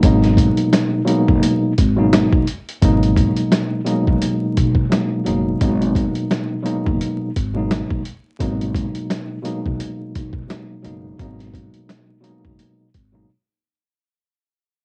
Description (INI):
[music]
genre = hip hop, boom-bap hip-hop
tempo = 86 BPM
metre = 4/4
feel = swing 56% on 16ths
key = G# minor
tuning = A4 = 440 Hz
[part]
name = tine electric piano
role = accompaniment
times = 0.0-13.3 s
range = B2 to D#4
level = -22 LUFS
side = equal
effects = high-pass filter, low-pass filter, cassette tape
[part]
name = upright bass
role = bass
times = 0.0-13.2 s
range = F#1 to B1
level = -23 LUFS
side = equal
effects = none
[part]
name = trip hop sampler-style drum kit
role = drums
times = 0.0-13.1 s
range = hi-hat, kick drum, snare drum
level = -22 LUFS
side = equal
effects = cassette tape
[sound]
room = light reverb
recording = home recording on cassette, vinyl crackle, nothing above 10.8 kHz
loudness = -18 LUFS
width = mono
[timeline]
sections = 0.0-2.8 A section; 2.8-14.0 B section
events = fade-out 2.8-14.0; break 13.3-14.0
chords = 0.0 G#m7